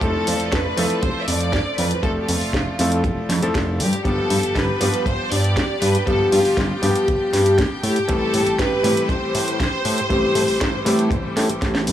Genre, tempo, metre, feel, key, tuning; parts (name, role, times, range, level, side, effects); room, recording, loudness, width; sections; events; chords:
nu-disco, nu disco; 119 BPM; 4/4; straight; A4 = 440 Hz
clear studio violin section; melody; 0.0-11.6 s; F4 to E5; -25 LUFS; right 1 dB; analog delay
warm electric grand piano; accompaniment; 0.0-11.9 s; E3 to E5; -23 LUFS; left 2 dB; sidechain pumping, analog delay
rich studio string section; sustained chords; 0.0-11.9 s; F3 to G5; -27 LUFS; equal; sidechain pumping
fat analog bass; bass; 0.0-11.9 s; F1 to A2; -21 LUFS; right 1 dB; tube saturation, sidechain pumping
house drum kit; drums; 0.0-11.9 s; hi-hat, snare drum; -25 LUFS; equal; overdrive, small room ambience
kick drum; drums; 0.0-11.7 s; -25 LUFS; equal; small room ambience
small room ambience; dry, gritty hardware recording, transformer saturation, faint mains hum; -17 LUFS; side -11 dB against mid
0.0-11.9 A section
drum fill 11.4-11.9
0.0 Fmaj7; 3.8 G7; 7.8 Am7